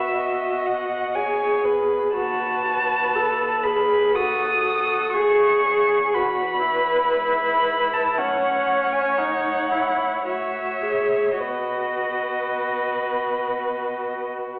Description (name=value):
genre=classical, slow romantic movement for string quartet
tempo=50-61 BPM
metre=3/4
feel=rubato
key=unclear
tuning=A4 = 440 Hz
part: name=muted violin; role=melody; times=0.0-14.3 s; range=D#5 to D#6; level=-27 LUFS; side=equal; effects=none
part: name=muted violin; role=second line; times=0.0-14.6 s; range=G#4 to D#5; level=-28 LUFS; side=equal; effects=none
part: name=muted viola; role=accompaniment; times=0.0-14.6 s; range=C#4 to A4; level=-26 LUFS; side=equal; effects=none
part: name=muted cello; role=bass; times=0.0-14.6 s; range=D#2 to B2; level=-40 LUFS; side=equal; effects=none
room=wet recital hall reverb, RT60 1.6 s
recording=recorded in a church or concert hall, telephone sound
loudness=-22 LUFS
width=mono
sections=0.0-14.6 A section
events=none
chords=0.0 B; 2.2 B7/D#; 5.2 E; 8.2 A6; 10.3 F#m/A; 11.4 B